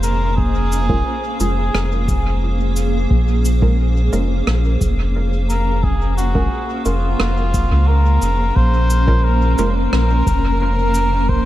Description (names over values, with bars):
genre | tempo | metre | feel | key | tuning
ambient dub | 88 BPM | 4/4 | straight | Bb minor | A4 = 440 Hz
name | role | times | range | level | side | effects
trumpet with cup mute | melody | 0.0-11.5 s | F4 to C5 | -23 LUFS | equal | dub echo
granular cloud pad | sustained chords | 0.0-11.5 s | Bb3 to F5 | -23 LUFS | equal | built-in reverb
soft dub sub bass | bass | 0.0-11.5 s | F1 to Db2 | -17 LUFS | equal | tube saturation
cabasa and rim click | drums | 0.0-11.1 s | none | -27 LUFS | right 1 dB | dub echo
electronic kick drum | drums | 0.4-11.4 s | none | -20 LUFS | equal | none
filtered dub chord stab | stabs | 0.9-9.7 s | Ab3 to Bb4 | -28 LUFS | right 2 dB | chorus, dub echo
wind-like tuned noise texture | texture | 9.3-11.5 s | Bb4 | -32 LUFS | equal | none
room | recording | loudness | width
light reverb | none | -14 LUFS | side -14 dB against mid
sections
0.0-11.5 A section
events
none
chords
0.0 Bbm7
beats
| 0.38 1.06 1.74 2.42 | 3.11 3.79 4.47 5.15 | 5.83 6.52 7.20 7.88 | 8.56 9.24 9.93 10.61 | 11.29